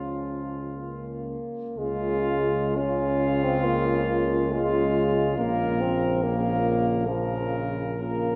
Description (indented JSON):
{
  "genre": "classical, hymn-like piece for brass band",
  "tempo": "57-73 BPM",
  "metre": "4/4",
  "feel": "rubato",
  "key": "Db major",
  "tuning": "A4 = 440 Hz",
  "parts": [
    { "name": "warm cornet", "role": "melody", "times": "0.0-8.4 s", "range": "F4 to Bb4", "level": "-36 LUFS", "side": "equal", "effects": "none" },
    { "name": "mellow French horn section", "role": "second line", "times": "0.0-8.4 s", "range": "Db4 to F4", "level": "-35 LUFS", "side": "equal", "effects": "none" },
    { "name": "clear trombone", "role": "accompaniment", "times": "0.0-8.4 s", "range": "Db3", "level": "-38 LUFS", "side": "equal", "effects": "none" },
    { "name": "warm euphonium", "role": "accompaniment", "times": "0.0-8.4 s", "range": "F3 to Db4", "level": "-29 LUFS", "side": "equal", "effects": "none" },
    { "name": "mellow tuba", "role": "bass", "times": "0.0-8.4 s", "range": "Bb1 to Db2", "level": "-32 LUFS", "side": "equal", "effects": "none" }
  ],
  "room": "wet church reverb, RT60 3.3 s",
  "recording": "recorded in a church or concert hall",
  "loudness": "-26 LUFS",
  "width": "mono",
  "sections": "0.0-1.8 A section; 1.8-8.4 B section",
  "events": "none",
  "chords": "0.0 Db; 5.4 Bbm",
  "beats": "0.76 | 1.77 2.76 3.64 4.53 | 5.38 6.23 7.07 8.00"
}